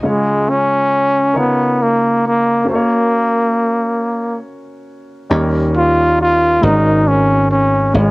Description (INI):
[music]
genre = gospel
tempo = 46 BPM (dotted quarters)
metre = 6/8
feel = straight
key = Db major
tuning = A4 = 440 Hz
[part]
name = clear concert grand piano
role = accompaniment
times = 0.0-8.1 s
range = Ab2 to Db5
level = -20 LUFS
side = equal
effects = cassette tape
[part]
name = breathy trumpet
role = melody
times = 0.1-8.1 s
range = Ab3 to F4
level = -13 LUFS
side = equal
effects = cassette tape
[part]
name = dry thumbed slap bass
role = bass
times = 5.3-8.1 s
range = Ab1 to Eb2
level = -16 LUFS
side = equal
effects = none
[sound]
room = light reverb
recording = home recording on cassette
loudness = -12 LUFS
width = side -24 dB against mid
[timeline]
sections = 0.0-8.1 A section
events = none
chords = 0.0 Db; 1.4 Db69; 2.7 Gb; 5.3 Eb7; 6.6 Ab9sus4